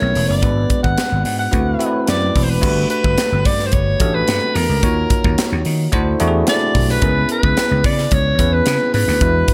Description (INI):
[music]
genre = polished 1980s jazz-funk pop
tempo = 109 BPM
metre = 4/4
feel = straight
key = unclear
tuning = A4 = 441 Hz
[part]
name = breathy alto saxophone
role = melody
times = 0.0-9.5 s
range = A#4 to F#5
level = -22 LUFS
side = equal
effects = none
[part]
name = bell-like tine electric piano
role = accompaniment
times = 0.0-9.5 s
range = G#3 to C#5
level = -23 LUFS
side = equal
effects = subtle chorus
[part]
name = vintage slap bass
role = bass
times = 0.0-9.4 s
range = E1 to D#3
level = -21 LUFS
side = equal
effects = none
[part]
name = crisp fusion drum kit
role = drums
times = 0.2-9.5 s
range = crash cymbal, hi-hat, kick drum, snare drum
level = -22 LUFS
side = equal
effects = gated reverb
[sound]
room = small room ambience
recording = none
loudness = -16 LUFS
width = mono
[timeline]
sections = 0.0-2.6 A section; 2.6-9.5 B section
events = none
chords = 0.4 G#m7b5; 1.5 D13; 2.6 Gmaj9; 4.8 D#m9; 5.9 D9; 7.0 C#m7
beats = | 0.43 0.98 1.53 2.08 | 2.63 3.18 3.73 4.28 | 4.83 5.38 5.92 6.47 | 7.02 7.57 8.12 8.67 | 9.21